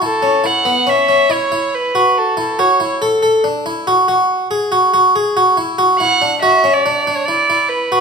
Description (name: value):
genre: contemporary instrumental, contemporary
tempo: 141 BPM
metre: 7/4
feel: straight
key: unclear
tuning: A4 = 439 Hz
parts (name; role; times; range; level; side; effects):
- rich violin; melody; 0.0-8.0 s; A4 to F#5; -15 LUFS; right 3 dB; none
- harpsichord; arpeggios; 0.0-8.0 s; B3 to A4; -13 LUFS; equal; none
room: moderate recital hall reverb, RT60 1.6 s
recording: minimal, uncompressed stereo recording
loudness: -12 LUFS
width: side -5 dB against mid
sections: 0.0-8.0 A section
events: none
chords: 0.0 A; 3.0 Dadd9 (rootless); 6.0 Bm (rootless)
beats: | 0.01 0.44 0.87 1.30 1.72 2.15 2.58 | 3.01 3.43 3.86 4.29 4.71 5.14 5.57 | 5.99 6.42 6.85 7.27 7.70